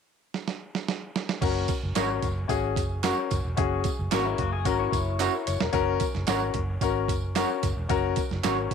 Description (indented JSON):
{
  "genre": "uptempo 1960s-style soul",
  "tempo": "111 BPM",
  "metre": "4/4",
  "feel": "straight",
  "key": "F# mixolydian",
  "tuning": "A4 = 440 Hz",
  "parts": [
    { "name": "dusty soul sampler-style drum kit", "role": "drums", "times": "0.3-8.7 s", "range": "crash cymbal, hi-hat, kick drum, snare drum", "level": "-30 LUFS", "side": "right 5 dB", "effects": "overdrive" },
    { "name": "clear baby grand piano", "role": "accompaniment", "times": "1.4-8.7 s", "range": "C#4 to C#5", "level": "-28 LUFS", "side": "left 10 dB", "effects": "none" },
    { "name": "vintage muted fingered electric bass", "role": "bass", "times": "1.4-8.7 s", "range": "E1 to G#1", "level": "-30 LUFS", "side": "right 1 dB", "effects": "none" },
    { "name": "tambourine and handclaps", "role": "percussion", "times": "1.4-8.6 s", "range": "none", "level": "-39 LUFS", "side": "right 10 dB", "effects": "none" },
    { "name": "electric guitar through a small old amp", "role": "stabs", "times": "2.0-8.6 s", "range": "C#4 to C#5", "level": "-33 LUFS", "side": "right 8 dB", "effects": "none" },
    { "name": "electric guitar at the edge of break-up", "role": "riff", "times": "4.1-5.6 s", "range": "G#3 to C#5", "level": "-32 LUFS", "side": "left 8 dB", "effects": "lush chorus" }
  ],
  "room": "moderate spring reverb, RT60 2.8 s",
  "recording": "1960s-style stereo with parts hard left and right",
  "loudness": "-24 LUFS",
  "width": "side -6 dB against mid",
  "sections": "0.0-1.4 A section; 1.4-5.7 B section; 5.7-8.7 C section",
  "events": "drum fill 0.3-1.4, 5.2-5.7",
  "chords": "0.0 N.C.; 1.4 F#"
}